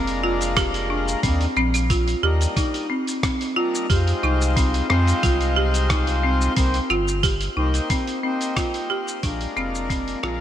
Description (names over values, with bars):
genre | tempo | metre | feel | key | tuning
organic downtempo | 90 BPM | 4/4 | straight | C minor | A4 = 440 Hz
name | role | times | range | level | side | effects
hand-pumped harmonium | accompaniment | 0.0-10.4 s | G3 to C5 | -27 LUFS | left 2 dB | sidechain pumping, ping-pong delay, shimmer reverb
folk marimba with hard mallets | arpeggios | 0.0-10.3 s | C4 to G4 | -24 LUFS | equal | ping-pong delay, shimmer reverb
warm sub bass | bass | 0.0-10.4 s | F1 to F2 | -22 LUFS | equal | none
dusty soul sampler-style drum kit | drums | 0.1-10.4 s | claves, hi-hat, rim click, shaker | -29 LUFS | right 2 dB | gated reverb
electronic kick drum | drums | 0.6-10.0 s | none | -24 LUFS | equal | none
room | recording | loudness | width
moderate lush hall reverb, RT60 2.8 s | bright 1980s-style digital production | -19 LUFS | side -10 dB against mid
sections
0.0-10.4 A section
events
fade-out 7.5-10.4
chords
0.0 Bb7; 1.2 Ebmaj7; 3.9 Fm7; 6.6 Cm7; 9.2 Bb7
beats
0.57 | 1.23 1.90 2.57 3.23 | 3.90 4.57 5.23 5.90 | 6.57 7.23 7.90 8.57 | 9.23 9.90